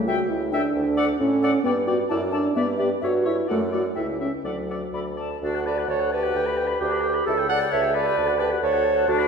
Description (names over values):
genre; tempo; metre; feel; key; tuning
quick classical-period movement for wind quintet; 132 BPM; 2/4; rubato; D major; A4 = 440 Hz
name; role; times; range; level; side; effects
dark French horn; accompaniment; 0.0-9.3 s; F#3 to B4; -26 LUFS; right 1 dB; none
mellow bassoon; bass; 0.0-9.3 s; C#2 to A2; -28 LUFS; equal; none
silver concert flute; melody; 0.1-9.3 s; D4 to B5; -31 LUFS; left 8 dB; none
warm oboe; second line; 0.1-9.3 s; C#5 to B5; -31 LUFS; left 4 dB; none
dark clarinet; accompaniment; 0.1-9.3 s; F#4 to F#5; -26 LUFS; right 3 dB; none
room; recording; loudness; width
wet scoring stage reverb, RT60 1.8 s; heard from further back in the room; -21 LUFS; side -6 dB against mid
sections
0.0-5.4 A section; 5.4-9.3 A section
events
none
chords
0.0 A7/C#; 0.8 D; 1.7 G; 2.1 D/F#; 2.6 Em7/G (rootless); 3.0 A7/G; 3.5 D/F#; 4.0 A/C#; 4.5 D; 6.4 G/D; 7.3 A7/C#; 8.2 D